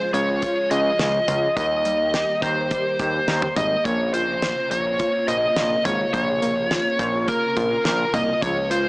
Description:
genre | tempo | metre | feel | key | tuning
synth-pop | 105 BPM | 4/4 | straight | Bb dorian | A4 = 440 Hz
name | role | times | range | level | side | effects
biting lead guitar | melody | 0.0-8.9 s | Bb4 to Eb5 | -21 LUFS | equal | overdrive, tape echo
string machine, violins | sustained chords | 0.0-8.9 s | C3 to G4 | -30 LUFS | equal | ensemble chorus
analog pluck | arpeggios | 0.0-8.9 s | F3 to Bb5 | -31 LUFS | equal | chorus, tape echo
fat analog bass | bass | 0.1-8.9 s | Ab1 to Eb2 | -26 LUFS | equal | none
damped 70s drum kit | drums | 0.1-8.8 s | hi-hat, kick drum, snare drum, toms | -27 LUFS | equal | none
room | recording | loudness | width
light reverb, studio reverb | dry, gritty hardware recording, transformer saturation, small speaker sound | -19 LUFS | side -26 dB against mid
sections
0.0-8.9 A section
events
none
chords
0.0 Db; 1.6 Eb; 3.9 Bbmadd9

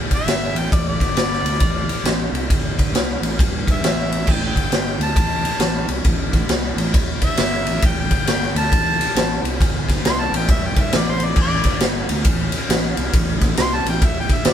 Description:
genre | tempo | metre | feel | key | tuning
blues rock power trio and southern rock | 136 BPM | 4/4 | swing 64% on 8ths | A minor | A4 = 441 Hz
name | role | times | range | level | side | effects
raw garage drum kit | drums | 0.1-14.5 s | crash cymbal, kick drum, ride cymbal, snare drum | -18 LUFS | equal | none
clear harmonica | melody | 0.2-14.5 s | C5 to C6 | -24 LUFS | left 1 dB | overdrive
fuzz fingered electric bass | bass | 0.3-14.5 s | G1 to G2 | -24 LUFS | equal | overdrive
room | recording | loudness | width
light reverb | band playing live in one room | -16 LUFS | side -9 dB against mid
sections
0.0-14.5 A section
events
harmonica solo 0.0-14.5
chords
0.0 A5; 0.9 G5; 1.4 Am; 2.5 N.C.; 3.0 Am; 3.4 Em/G; 3.8 A5; 4.5 N.C.; 4.9 Am; 8.1 N.C.; 8.5 Am; 9.6 N.C.; 10.0 Am; 10.5 Em/G; 10.9 Amadd11; 11.6 G5; 12.0 Am

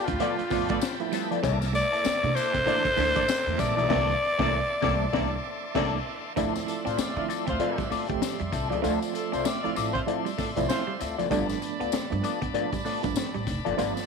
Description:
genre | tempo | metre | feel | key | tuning
funk | 97 BPM | 4/4 | swing 60% on 16ths | D dorian | A4 = 441 Hz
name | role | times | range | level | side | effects
growling alto saxophone | melody | 0.0-6.1 s | F4 to D5 | -26 LUFS | equal | none
semi-hollow electric guitar | accompaniment | 0.0-14.0 s | Bb3 to E5 | -31 LUFS | left 11 dB | wah
bright tonewheel organ | sustained chords | 0.0-14.1 s | D5 to D6 | -37 LUFS | right 1 dB | slow rotary speaker, overdrive
clean electric guitar | riff | 0.1-13.9 s | E3 to D4 | -37 LUFS | right 14 dB | lush chorus
upright bass | bass | 0.1-13.9 s | F1 to D3 | -32 LUFS | right 1 dB | none
crunchy breakbeat drum kit | drums | 0.1-14.1 s | crash cymbal, hi-hat, kick drum, snare drum | -33 LUFS | left 5 dB | none
mellow horn section | second line | 0.2-10.9 s | F3 to D5 | -34 LUFS | equal | none
reed electric piano | stabs | 0.2-14.1 s | D3 to G4 | -32 LUFS | right 14 dB | fast tremolo, tape echo
tambourine | percussion | 0.5-14.1 s | none | -42 LUFS | left 13 dB | none
room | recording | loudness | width
light reverb, small room ambience | 1960s-style stereo with parts hard left and right | -24 LUFS | side -5 dB against mid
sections
0.0-6.4 A section; 6.4-14.1 B section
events
band accent 3.9-6.4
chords
0.0 G9; 1.4 C13; 6.4 Dm7; 11.3 G9

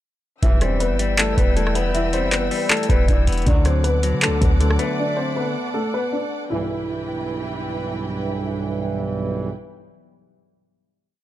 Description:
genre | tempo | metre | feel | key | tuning
hip hop, trap | 158 BPM | 4/4 | half-time | E minor | A4 = 440 Hz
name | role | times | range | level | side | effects
dark concert grand piano | melody | 0.4-7.6 s | A3 to E5 | -24 LUFS | equal | low-pass filter, tape echo
semi-hollow electric guitar | accompaniment | 0.4-5.7 s | D3 to B3 | -25 LUFS | left 6 dB | spring reverb, low-pass filter
muted studio string section | sustained chords | 0.4-9.5 s | E3 to E6 | -31 LUFS | right 2 dB | none
warm brass ensemble | stabs | 0.4-0.8, 3.5-3.8, 6.5-9.5 s | B1 to F#3 | -27 LUFS | right 4 dB | none
clean 808-style bass | bass | 0.4-4.8 s | E1 to D3 | -21 LUFS | equal | none
booming analog drum machine | drums | 0.4-4.9 s | handclaps, hi-hat, kick drum, rim click | -19 LUFS | equal | none
room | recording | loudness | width
little or no reverb | dark, warm production | -18 LUFS | side -13 dB against mid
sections
0.4-6.5 hook; 6.5-9.5 final chord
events
none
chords
0.4 Em; 3.5 D; 6.5 Em

